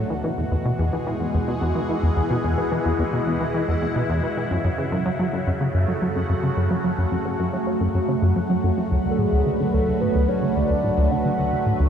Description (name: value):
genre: ambient, sequencer-driven space music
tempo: 109 BPM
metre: 4/4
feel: straight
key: unclear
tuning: A4 = 440 Hz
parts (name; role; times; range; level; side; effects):
- phased analog pad; sustained chords; 0.0-11.9 s; B2 to A4; -24 LUFS; right 1 dB; phaser, chorus
- plucky analog bass; riff; 0.0-11.9 s; D2 to F#3; -22 LUFS; equal; lush chorus, ping-pong delay
- bubbling stepped-filter texture; texture; 0.0-11.9 s; F#4 to B5; -37 LUFS; right 1 dB; chorus, built-in reverb
- soft octave-layered synth lead; melody; 9.1-11.9 s; G#4 to F#5; -24 LUFS; left 1 dB; chorus, ping-pong delay
room: wet cathedral reverb, RT60 5.7 s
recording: in a vast, echoing space, cassette tape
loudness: -20 LUFS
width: side -8 dB against mid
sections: 0.0-11.9 A section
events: none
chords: 0.1 E; 4.5 F#m; 8.9 D